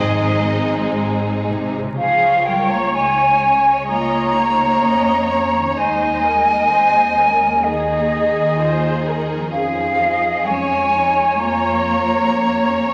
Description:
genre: cinematic, emotional film score for orchestra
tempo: 64 BPM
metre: 4/4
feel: rubato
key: Db major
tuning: A4 = 439 Hz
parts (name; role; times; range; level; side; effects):
- warm studio violin section; melody; 0.0-12.9 s; C4 to Eb5; -32 LUFS; equal; none
- bright silver concert flute; second line; 0.0-12.9 s; Ab4 to Bb5; -19 LUFS; equal; none
- rich studio violin section; second line; 0.0-12.9 s; Eb4 to Eb5; -26 LUFS; equal; none
- warm studio viola section; accompaniment; 0.0-12.9 s; Ab3 to Eb5; -27 LUFS; equal; none
- mellow French horn section; sustained chords; 0.0-1.0 s; Eb3; -34 LUFS; equal; none
- concert harp; arpeggios; 0.0-12.9 s; Ab2 to Db6; -36 LUFS; equal; none
- dark studio double bass section; bass; 0.0-12.9 s; Ab1 to F2; -33 LUFS; equal; none
- warm studio cello section; bass; 0.0-12.9 s; Ab2 to Bb3; -26 LUFS; equal; none
room: wet scoring stage reverb, RT60 1.9 s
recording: vinyl crackle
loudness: -17 LUFS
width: mono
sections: 0.0-2.0 A section; 2.0-12.9 A section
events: none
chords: 0.0 Ab; 2.0 Dbadd9; 5.8 Ebsus4; 9.5 Dbadd9/F

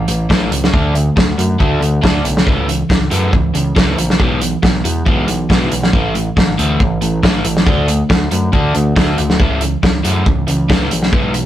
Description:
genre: indie rock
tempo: 138 BPM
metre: 4/4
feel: straight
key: A major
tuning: A4 = 440 Hz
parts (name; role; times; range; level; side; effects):
- crunchy overdriven guitar; riff; 0.0-11.5 s; A2 to D4; -18 LUFS; right 1 dB; none
- growling picked electric bass; bass; 0.0-11.5 s; A1 to F#2; -18 LUFS; equal; overdrive
- loose indie drum kit; drums; 0.1-11.4 s; hi-hat, kick drum, snare drum; -14 LUFS; equal; none
room: light reverb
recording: rough rehearsal-room recording, tube saturation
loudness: -12 LUFS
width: side -12 dB against mid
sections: 0.0-11.5 A section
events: none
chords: 0.0 A; 0.7 D5; 2.5 A/C#; 4.2 E/B; 5.9 A5; 7.7 D5; 9.4 A/C#

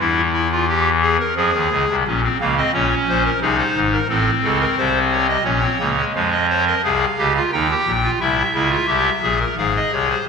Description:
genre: classical, baroque-style 3-part fugue for pipe organ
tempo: 88 BPM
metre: 3/4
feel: straight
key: unclear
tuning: A4 = 442 Hz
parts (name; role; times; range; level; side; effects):
- pipe organ, clarinet reed; solo; 0.0-10.2 s; Ab1 to G5; -16 LUFS; left 1 dB; none
room: wet scoring stage reverb, RT60 2.0 s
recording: minimal, uncompressed stereo recording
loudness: -16 LUFS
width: side -5 dB against mid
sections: 0.0-10.3 A section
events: none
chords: 0.0 Em; 1.4 Fm; 2.0 Bbm; 3.4 Ab/C; 4.1 Am; 5.5 Bbm; 6.2 Fm; 7.5 Eb; 8.2 C7; 9.6 Fm/Ab

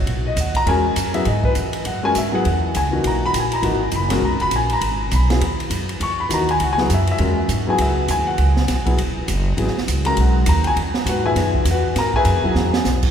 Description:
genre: modal jazz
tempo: 202 BPM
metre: 4/4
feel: swing 60% on 8ths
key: C# dorian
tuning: A4 = 440 Hz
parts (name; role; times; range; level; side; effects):
- upright bass; bass; 0.0-13.1 s; E1 to G#2; -20 LUFS; equal; none
- open jazz drum kit; drums; 0.1-13.1 s; crash cymbal, hi-hat, kick drum, ride cymbal, snare drum; -25 LUFS; right 2 dB; none
- warm upright piano; accompaniment; 0.3-12.8 s; A#2 to C#6; -20 LUFS; left 2 dB; none
room: wet church reverb, RT60 3.8 s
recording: recorded in a church or concert hall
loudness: -16 LUFS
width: side -8 dB against mid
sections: 0.0-13.1 A section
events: drum fill 12.6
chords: 0.0 C#m11

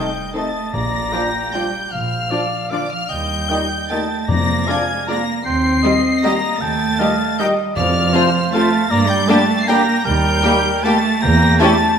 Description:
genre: classical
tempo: 154 BPM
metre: 3/4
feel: uneven beats, rubato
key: unclear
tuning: A4 = 440 Hz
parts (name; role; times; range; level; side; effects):
- clear symphonic violin section; melody; 0.0-12.0 s; D6 to C7; -23 LUFS; left 3 dB; none
- mellow concert flute; second line; 0.0-12.0 s; D5 to C6; -25 LUFS; left 4 dB; none
- rich chamber violin section; second line; 0.0-11.7 s; F4 to G5; -28 LUFS; left 3 dB; none
- warm cor anglais; second line; 0.0-12.0 s; Bb4 to A5; -24 LUFS; right 2 dB; none
- rich chamber viola section; accompaniment; 0.0-11.7 s; Eb3 to G4; -24 LUFS; equal; none
- mellow French horn section; sustained chords; 0.0-11.7 s; G3 to G4; -26 LUFS; left 4 dB; none
- warm trombone section; sustained chords; 0.0-11.7 s; F2 to A3; -28 LUFS; right 3 dB; none
- dark trumpet section; stabs; 0.0-11.7 s; G4 to Eb5; -25 LUFS; equal; none
- rich chamber cello section; bass; 0.0-12.0 s; D3 to C4; -21 LUFS; right 3 dB; none
- rich chamber double bass section; bass; 0.7-11.5 s; Bb1 to G2; -22 LUFS; right 2 dB; none
- timpani; percussion; 0.7-1.3, 4.3-4.8, 7.8-8.3 s; F2 to Bb2; -25 LUFS; left 3 dB; none
room: moderate recital hall reverb, RT60 1.6 s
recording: none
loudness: -15 LUFS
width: side -7 dB against mid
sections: 0.0-12.0 A section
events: none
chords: 0.0 Adim/C; 0.7 Bb; 3.1 Eb; 4.3 Ddim/F; 5.5 Eb; 7.8 F; 8.9 Gm; 10.1 Eb; 11.2 Edim7

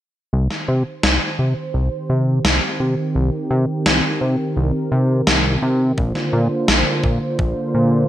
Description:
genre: synthwave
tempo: 85 BPM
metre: 4/4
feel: straight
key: C minor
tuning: A4 = 438 Hz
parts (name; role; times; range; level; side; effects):
- warm analog pad; sustained chords; 0.3-8.1 s; D3 to C5; -22 LUFS; right 1 dB; chorus, vintage 12-bit sampler grit, sidechain pumping
- fat analog bass; bass; 0.3-8.0 s; Bb1 to C3; -18 LUFS; equal; none
- electronic snare drum; drums; 0.5-6.8 s; none; -18 LUFS; equal; gated reverb, gated reverb snare, studio reverb
- electronic kick drum; drums; 6.0-7.5 s; none; -21 LUFS; equal; studio reverb
room: light reverb, digital ambience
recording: bright 1980s-style digital production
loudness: -16 LUFS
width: side -12 dB against mid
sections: 0.3-8.1 A section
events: filter sweep on analog synth bass 0.3-8.1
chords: 0.3 Cm; 6.0 Bbadd9

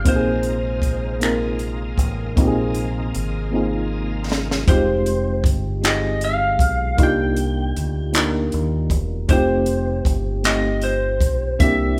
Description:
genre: slow six-eight R&B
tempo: 52 BPM (dotted quarters)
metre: 6/8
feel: straight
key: unclear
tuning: A4 = 440 Hz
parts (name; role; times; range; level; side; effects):
- lightly driven lead guitar; melody; 0.0-1.2, 4.7-12.0 s; C5 to G5; -26 LUFS; equal; none
- mellow FM electric piano; accompaniment; 0.0-12.0 s; G3 to Bb4; -25 LUFS; equal; chorus, tremolo
- bright tonewheel organ; sustained chords; 0.0-4.6 s; C3 to F4; -36 LUFS; equal; overdrive, chorus vibrato, slow rotary speaker
- deep dub fingered electric bass; bass; 0.0-12.0 s; E1 to Eb2; -26 LUFS; equal; none
- compact cocktail drum kit; drums; 0.1-11.8 s; finger snaps, handclaps, hi-hat, kick drum, snare drum; -22 LUFS; equal; none
room: moderate recital hall reverb, RT60 1.3 s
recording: recorded in a church or concert hall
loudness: -20 LUFS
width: mono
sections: 0.0-2.4 A section; 2.4-4.7 B section; 4.7-12.0 C section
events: drum fill 3.5-4.7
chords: 0.1 Bb9sus4; 4.7 Fm9; 7.0 Cm11; 9.3 F9

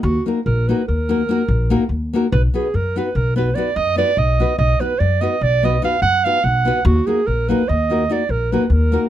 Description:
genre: balkan folk, Balkan wedding band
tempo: 291 BPM (eighths)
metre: 11/8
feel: straight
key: unclear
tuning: A4 = 440 Hz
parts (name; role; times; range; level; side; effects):
- mellow clarinet; melody; 0.0-9.0 s; Gb4 to F#5; -20 LUFS; right 5 dB; none
- upright bass; bass; 0.0-8.9 s; Bb1 to F#2; -18 LUFS; left 1 dB; none
- nylon-string guitar; accompaniment; 0.3-9.1 s; Bb3 to B4; -20 LUFS; left 4 dB; none
room: light reverb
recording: close, detailed microphones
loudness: -15 LUFS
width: side -12 dB against mid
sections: 0.0-9.1 A section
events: none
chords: 0.0 Ebm; 2.3 B; 6.9 Ebm

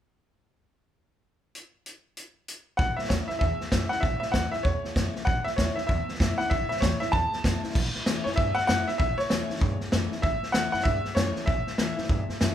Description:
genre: rockabilly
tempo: 194 BPM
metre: 4/4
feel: swing 62% on 8ths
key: A mixolydian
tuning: A4 = 440 Hz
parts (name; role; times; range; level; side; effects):
- vintage drum kit; drums; 1.5-12.5 s; crash cymbal, hi-hat, kick drum, snare drum; -27 LUFS; equal; none
- clear upright piano; melody; 2.8-12.5 s; C#5 to A5; -29 LUFS; left 1 dB; none
- picked steel-string acoustic guitar; accompaniment; 2.8-12.5 s; E2 to E4; -36 LUFS; left 3 dB; none
- upright bass; bass; 2.8-12.5 s; A1 to G2; -32 LUFS; right 1 dB; none
room: light reverb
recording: band playing live in one room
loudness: -24 LUFS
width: side -10 dB against mid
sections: 1.6-2.8 A section; 2.8-7.8 B section; 7.8-12.5 C section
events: none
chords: 1.6 N.C.; 2.8 A

